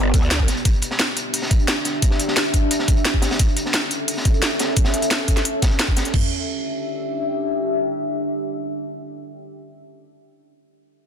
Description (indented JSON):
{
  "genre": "dark technical drum and bass",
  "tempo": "175 BPM",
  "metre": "4/4",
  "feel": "straight",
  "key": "E dorian",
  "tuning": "A4 = 440 Hz",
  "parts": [
    { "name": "deep dark ambient pad", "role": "sustained chords", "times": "0.0-9.6 s", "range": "B3 to E5", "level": "-24 LUFS", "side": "equal", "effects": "chorus, built-in reverb, sidechain pumping" },
    { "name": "growl bass", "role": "bass", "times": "0.0-0.5 s", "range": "G1 to D2", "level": "-20 LUFS", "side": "equal", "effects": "chorus, overdrive" },
    { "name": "crunchy breakbeat drum kit", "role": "drums", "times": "0.1-6.0 s", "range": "hi-hat, snare drum", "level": "-28 LUFS", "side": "equal", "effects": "high-pass filter on hats, small room ambience, high-pass filter on snare, high-pass filter on room" },
    { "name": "drum and bass drum kit", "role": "drums", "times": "0.1-6.2 s", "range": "crash cymbal, kick drum, toms", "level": "-19 LUFS", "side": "equal", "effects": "small room ambience" },
    { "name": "drum and bass drum kit", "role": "drums", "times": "0.1-6.1 s", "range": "hi-hat, snare drum", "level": "-22 LUFS", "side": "equal", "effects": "small room ambience" }
  ],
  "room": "light reverb",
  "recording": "dense, heavily limited modern master",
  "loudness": "-18 LUFS",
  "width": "side -7 dB against mid",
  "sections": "0.0-6.1 A section; 6.1-8.9 B section",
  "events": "none",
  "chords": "0.0 G; 0.7 Em7; 3.4 A; 6.1 Em7"
}